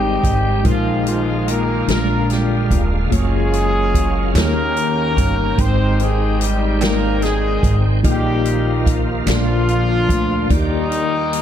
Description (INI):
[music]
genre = slow gospel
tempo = 49 BPM (dotted quarters)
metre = 6/8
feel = straight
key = unclear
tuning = A4 = 438 Hz
[part]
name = clear horn section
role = melody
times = 0.0-11.4 s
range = Eb3 to C5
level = -21 LUFS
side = left 2 dB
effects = analog delay
[part]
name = mellow tine electric piano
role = accompaniment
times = 0.0-11.4 s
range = Ab2 to G5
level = -22 LUFS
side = left 2 dB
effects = medium stereo tremolo
[part]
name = bright tonewheel organ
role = sustained chords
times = 0.0-11.4 s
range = Db3 to G5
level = -26 LUFS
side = right 2 dB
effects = slow rotary speaker, chorus vibrato
[part]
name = upright bass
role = bass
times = 0.0-11.4 s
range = Eb1 to Eb2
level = -20 LUFS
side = right 1 dB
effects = none
[part]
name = swinging big-band drum kit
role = drums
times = 0.2-11.4 s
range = hi-hat, kick drum, snare drum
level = -21 LUFS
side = equal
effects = none
[part]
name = group handclap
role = percussion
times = 4.4-9.7 s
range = none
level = -30 LUFS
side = right 6 dB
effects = none
[sound]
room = light reverb, small room ambience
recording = none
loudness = -15 LUFS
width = side -10 dB against mid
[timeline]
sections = 0.0-11.4 A section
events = none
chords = 0.0 Abmaj7; 0.7 Bb7sus4; 1.9 Bb7; 3.1 Gbmaj7; 4.4 Eb7; 5.6 Abmaj7; 8.0 Bbsus4; 9.3 Bb; 10.5 Ebmaj7